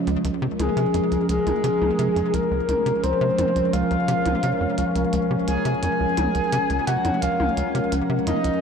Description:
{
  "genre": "ambient, sequencer-driven space music",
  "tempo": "86 BPM",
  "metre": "4/4",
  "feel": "straight",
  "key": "Db major",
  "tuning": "A4 = 442 Hz",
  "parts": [
    { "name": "sweeping resonant pad", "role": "sustained chords", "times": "0.0-8.6 s", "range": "F3 to Eb5", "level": "-24 LUFS", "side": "right 1 dB", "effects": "chorus" },
    { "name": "bubbling stepped-filter texture", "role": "texture", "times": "0.0-8.6 s", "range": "Db4 to Eb5", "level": "-33 LUFS", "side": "left 5 dB", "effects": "chorus, built-in reverb" },
    { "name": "tight sequencer bass", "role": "riff", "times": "0.1-8.5 s", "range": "Db2 to C3", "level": "-26 LUFS", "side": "equal", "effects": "analog chorus, ping-pong delay" },
    { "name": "minimal click drum kit", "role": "percussion", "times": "0.1-8.6 s", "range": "hi-hat, toms", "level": "-32 LUFS", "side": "left 1 dB", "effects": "ping-pong delay" },
    { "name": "breathy flute-like synth lead", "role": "melody", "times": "0.6-8.6 s", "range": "Ab4 to Ab5", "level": "-24 LUFS", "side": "left 1 dB", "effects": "lush chorus, vintage 12-bit sampler grit, ping-pong delay" }
  ],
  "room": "wet lush hall reverb, RT60 2.4 s",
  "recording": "none",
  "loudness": "-20 LUFS",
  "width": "side -6 dB against mid",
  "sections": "0.0-8.6 A section",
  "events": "none",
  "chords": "0.0 Dbmaj7",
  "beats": "| 0.25 0.94 1.64 2.34 | 3.04 3.73 4.43 5.13 | 5.83 6.53 7.22 7.92"
}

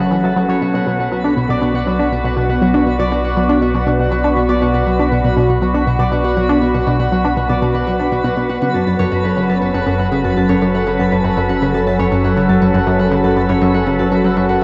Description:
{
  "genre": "ambient, sequencer-driven space music",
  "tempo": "120 BPM",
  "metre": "4/4",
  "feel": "straight",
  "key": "unclear",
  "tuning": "A4 = 440 Hz",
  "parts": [
    { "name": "phased analog pad", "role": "sustained chords", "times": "0.0-14.6 s", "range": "F#3 to C#6", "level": "-20 LUFS", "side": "equal", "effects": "phaser, chorus" },
    { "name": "concert harp", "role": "arpeggios", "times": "0.0-14.6 s", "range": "F#4 to B5", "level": "-24 LUFS", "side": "equal", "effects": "low-pass filter, tape echo" },
    { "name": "tight sequenced synth", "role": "riff", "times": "0.0-14.6 s", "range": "F#2 to D4", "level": "-20 LUFS", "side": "equal", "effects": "chorus, phaser, tape echo" },
    { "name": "warm sub bass", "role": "bass", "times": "0.0-14.6 s", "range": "F#1 to B1", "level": "-26 LUFS", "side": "equal", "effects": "tube saturation" },
    { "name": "twinkling granular texture", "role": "texture", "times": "0.0-14.6 s", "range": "B4", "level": "-28 LUFS", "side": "equal", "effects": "built-in reverb" }
  ],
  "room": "wet huge ambient reverb, RT60 8.7 s",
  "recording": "worn, warbling old tape, cassette tape, warbly pitch drift",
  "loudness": "-15 LUFS",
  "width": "mono",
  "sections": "0.0-14.6 A section",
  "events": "none",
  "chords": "0.0 F#m; 0.6 Bm; 8.6 F#m",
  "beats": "0.12 | 0.62 1.12 1.62 2.12 | 2.62 3.12 3.62 4.12 | 4.62 5.12 5.62 6.12 | 6.62 7.12 7.62 8.12 | 8.62 9.12 9.62 10.12 | 10.62 11.12 11.62 12.12 | 12.62 13.12 13.62 14.12 | 14.62"
}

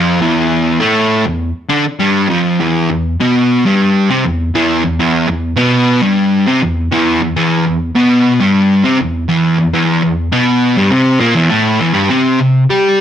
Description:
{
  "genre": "metal",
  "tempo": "101 BPM",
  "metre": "4/4",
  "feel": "straight",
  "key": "E phrygian",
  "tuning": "A4 = 439 Hz",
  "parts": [
    { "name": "fuzz guitar", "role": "solo", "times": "0.0-13.0 s", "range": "E2 to G4", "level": "-10 LUFS", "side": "equal", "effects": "distortion" }
  ],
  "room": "wet large studio reverb, RT60 0.9 s",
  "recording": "none",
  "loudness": "-10 LUFS",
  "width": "side -9 dB against mid",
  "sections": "0.0-2.6 A section; 2.6-13.0 B section",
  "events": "none",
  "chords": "0.0 Em; 12.1 C5",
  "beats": "| 0.22 0.81 1.41 2.00 | 2.60 3.19 3.79 4.38 | 4.98 5.57 6.17 6.76 | 7.36 7.95 8.54 9.14 | 9.73 10.32 10.92 11.51 | 12.11 12.70"
}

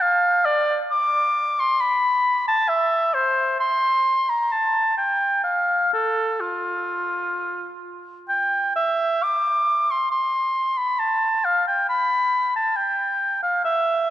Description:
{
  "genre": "classical, baroque-style fantasia for unaccompanied oboe",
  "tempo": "62-69 BPM",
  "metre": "3/4",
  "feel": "rubato",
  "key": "F major, C major from 8.3 s",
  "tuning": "A4 = 445 Hz",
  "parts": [
    { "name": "warm oboe", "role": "solo", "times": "0.0-14.1 s", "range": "F4 to D6", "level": "-19 LUFS", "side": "equal", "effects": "none" }
  ],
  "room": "wet church reverb, RT60 2.9 s",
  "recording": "none",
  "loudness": "-19 LUFS",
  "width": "side -12 dB against mid",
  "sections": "0.0-8.3 A section; 8.3-14.1 A section",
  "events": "none",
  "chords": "none",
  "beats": "| 0.02 0.94 1.82 | 2.70 3.62 4.52 | 5.45 6.39 7.34 | 8.28 9.22 10.12 | 10.99 11.87 12.76 | 13.64"
}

